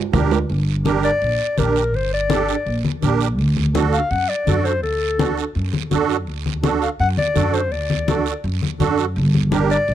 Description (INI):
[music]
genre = latin, cumbia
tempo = 166 BPM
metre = 4/4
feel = straight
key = G harmonic minor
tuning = A4 = 440 Hz
[part]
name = musette accordion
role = accompaniment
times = 0.1-9.8 s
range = D4 to Bb4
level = -22 LUFS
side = right 8 dB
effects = none
[part]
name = upright bass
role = bass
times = 0.1-9.9 s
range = G1 to F#2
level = -21 LUFS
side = equal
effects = none
[part]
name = congas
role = percussion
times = 0.1-9.9 s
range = none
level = -23 LUFS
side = left 4 dB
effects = none
[part]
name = guiro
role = percussion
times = 0.1-9.9 s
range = none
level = -34 LUFS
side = right 18 dB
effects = none
[part]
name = warm clarinet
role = melody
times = 1.0-9.9 s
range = A4 to F#5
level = -21 LUFS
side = left 3 dB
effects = none
[sound]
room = small room ambience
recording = dry, close 1970s-style studio recording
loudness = -17 LUFS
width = side -11 dB against mid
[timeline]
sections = 0.5-9.9 A section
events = none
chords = 0.5 Gm; 3.4 D; 9.2 Gm